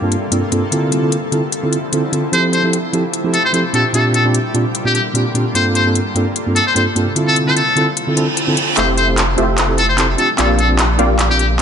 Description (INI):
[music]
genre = future bass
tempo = 149 BPM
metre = 4/4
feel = swing 55% on 16ths, half-time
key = unclear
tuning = A4 = 438 Hz
[part]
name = mellow tine electric piano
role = accompaniment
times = 0.0-11.6 s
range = G2 to A4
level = -17 LUFS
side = right 1 dB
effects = tape echo
[part]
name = shimmering ambient pad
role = sustained chords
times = 0.0-11.6 s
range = C3 to E5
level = -24 LUFS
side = left 1 dB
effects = chorus, built-in reverb
[part]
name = trap drum kit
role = drums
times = 0.1-11.6 s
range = handclaps, hi-hat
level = -19 LUFS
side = left 2 dB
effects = small room ambience
[part]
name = trumpet with metal mute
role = melody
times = 2.3-11.5 s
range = G4 to C5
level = -18 LUFS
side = left 2 dB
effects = digital delay
[part]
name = reverse cymbal and riser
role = sound effects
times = 8.1-11.6 s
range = none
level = -24 LUFS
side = right 5 dB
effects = none
[part]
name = supersaw stab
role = riff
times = 8.8-11.6 s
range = A3 to F5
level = -19 LUFS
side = equal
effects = low-pass filter
[part]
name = saturated sub bass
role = bass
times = 8.8-11.6 s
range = F1 to Bb1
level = -17 LUFS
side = equal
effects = none
[sound]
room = light reverb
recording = nothing above 10.6 kHz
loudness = -13 LUFS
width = side -7 dB against mid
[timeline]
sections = 0.0-8.8 A section; 8.8-11.6 B section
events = reverse cymbal 8.1-8.8; build-up 8.8-11.6; drum fill 8.8-11.6; filter sweep on supersaw synth 8.8-11.6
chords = 0.0 Gm11; 0.7 Dm9; 2.3 Fmaj9; 3.7 Bb6; 5.6 Gm11; 7.2 Dm9; 8.8 Fmaj9; 10.2 Bb6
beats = 0.32 | 0.72 1.12 1.53 1.93 | 2.33 2.73 3.14 3.54 | 3.94 4.34 4.75 5.15 | 5.55 5.96 6.36 6.76 | 7.16 7.57 7.97 8.37 | 8.78 9.18 9.58 9.98 | 10.39 10.79 11.19 11.59